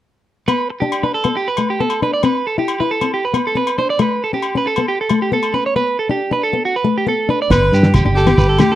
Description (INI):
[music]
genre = highlife guitar band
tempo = 137 BPM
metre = 4/4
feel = straight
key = G major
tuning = A4 = 439 Hz
[part]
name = fingerpicked plugged-in steel-string acoustic guitar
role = accompaniment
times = 0.5-8.8 s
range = A3 to E4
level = -20 LUFS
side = left 5 dB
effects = none
[part]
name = electric guitar at the edge of break-up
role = arpeggios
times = 0.5-8.8 s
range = F#4 to D5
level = -18 LUFS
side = right 4 dB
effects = slapback echo
[part]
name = agogo bells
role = percussion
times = 0.5-8.7 s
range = none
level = -26 LUFS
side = left 6 dB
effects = none
[part]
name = edgy alto saxophone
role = melody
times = 7.5-8.8 s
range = G4 to B4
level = -16 LUFS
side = equal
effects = none
[part]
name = fingered electric bass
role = bass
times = 7.5-8.6 s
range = E1 to G2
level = -15 LUFS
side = equal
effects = none
[part]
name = cloth-damped thuddy drum kit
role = drums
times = 7.5-8.7 s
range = kick drum, snare drum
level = -15 LUFS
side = equal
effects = none
[part]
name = congas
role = percussion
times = 7.5-8.7 s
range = none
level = -24 LUFS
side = right 1 dB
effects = none
[part]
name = shekere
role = percussion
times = 7.5-8.7 s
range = none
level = -24 LUFS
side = right 1 dB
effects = none
[sound]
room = little or no reverb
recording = dry, close 1970s-style studio recording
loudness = -14 LUFS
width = side -13 dB against mid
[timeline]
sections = 0.5-7.5 A section; 7.5-8.8 B section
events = none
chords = 0.5 G; 2.2 C; 4.0 A7; 5.8 D5; 7.5 G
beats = | 0.48 0.92 1.36 1.80 | 2.24 2.68 3.12 3.56 | 4.00 4.44 4.88 5.32 | 5.75 6.19 6.63 7.07 | 7.51 7.94 8.38